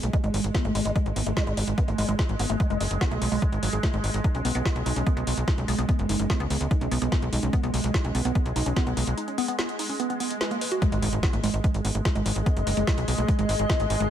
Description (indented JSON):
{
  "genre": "psychedelic trance",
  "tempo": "146 BPM",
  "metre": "4/4",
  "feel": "straight",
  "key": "G# minor",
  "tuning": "A4 = 444 Hz",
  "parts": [
    { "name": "swarming drone", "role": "sustained chords", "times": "0.0-14.1 s", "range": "G#3", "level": "-33 LUFS", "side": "right 2 dB", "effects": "built-in reverb, sidechain pumping" },
    { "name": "woody wave-folded pluck", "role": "riff", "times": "0.0-14.0 s", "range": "F#3 to B4", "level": "-30 LUFS", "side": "moving between left 6 dB and right 6 dB", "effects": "chorus, auto-pan, sidechain pumping, tape echo" },
    { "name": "tight sequencer bass", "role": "bass", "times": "0.0-14.1 s", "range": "F#1 to C#2", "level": "-27 LUFS", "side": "equal", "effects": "none" },
    { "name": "drum and bass drum kit", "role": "drums", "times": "0.0-14.1 s", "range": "hi-hat, snare drum", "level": "-32 LUFS", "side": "equal", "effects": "none" },
    { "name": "electronic kick drum", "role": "drums", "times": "0.1-13.8 s", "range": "none", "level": "-24 LUFS", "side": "equal", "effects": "none" },
    { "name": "swell and impact", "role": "sound effects", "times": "10.1-12.5 s", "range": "none", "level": "-37 LUFS", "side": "equal", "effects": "none" },
    { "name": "granular cloud pad", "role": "texture", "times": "12.2-14.1 s", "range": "G#4 to G#5", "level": "-30 LUFS", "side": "left 1 dB", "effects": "built-in reverb, sidechain pumping" }
  ],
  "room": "little or no reverb",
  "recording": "none",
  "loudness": "-23 LUFS",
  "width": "side -10 dB against mid",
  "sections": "0.0-10.8 A section; 10.8-14.1 B section",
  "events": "filter sweep on synth arpeggio sound 0.0-10.8; break 9.2-10.8; swell 10.1-10.8; drop 10.8-14.1; impact 10.8-12.5",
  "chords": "0.0 N.C.; 4.2 B5; 10.8 G#5"
}